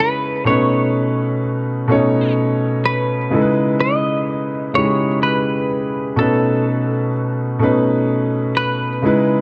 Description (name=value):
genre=R&B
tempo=42 BPM (dotted quarters)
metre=6/8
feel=straight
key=unclear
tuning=A4 = 440 Hz
part: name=semi-hollow electric guitar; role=melody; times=0.0-9.4 s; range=A4 to D#5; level=-23 LUFS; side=equal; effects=analog chorus
part: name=clear baby grand piano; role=accompaniment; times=0.0-9.4 s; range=B2 to C#5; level=-19 LUFS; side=equal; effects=none
room=light reverb, small room ambience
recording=dark, warm production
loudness=-18 LUFS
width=mono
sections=0.0-9.4 A section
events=none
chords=0.5 B9; 3.3 C#m9; 6.2 B9